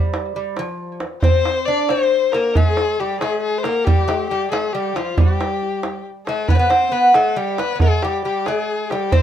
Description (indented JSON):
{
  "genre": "Persian modal ensemble",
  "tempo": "91 BPM (dotted quarters)",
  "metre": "6/8",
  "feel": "straight",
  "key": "G dastgah shur",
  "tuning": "A4 = 439 Hz",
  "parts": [
    { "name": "lute", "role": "melody", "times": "0.0-9.2 s", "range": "F3 to D4", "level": "-20 LUFS", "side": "equal", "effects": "tape echo" },
    { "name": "tombak", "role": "percussion", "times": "0.1-9.2 s", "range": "none", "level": "-18 LUFS", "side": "right 2 dB", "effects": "none" },
    { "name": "rich kamancheh", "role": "second line", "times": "1.2-9.2 s", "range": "F4 to D5", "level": "-22 LUFS", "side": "left 5 dB", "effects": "none" }
  ],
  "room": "moderate studio reverb, RT60 0.5 s",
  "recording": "none",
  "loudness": "-16 LUFS",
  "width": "side -10 dB against mid",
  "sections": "0.0-6.5 A section; 6.5-9.2 B section",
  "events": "none",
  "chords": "none",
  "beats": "0.57 | 1.23 1.89 | 2.55 3.20 | 3.86 4.52 | 5.18 5.83 | 6.49 7.15 | 7.80 8.46 | 9.12"
}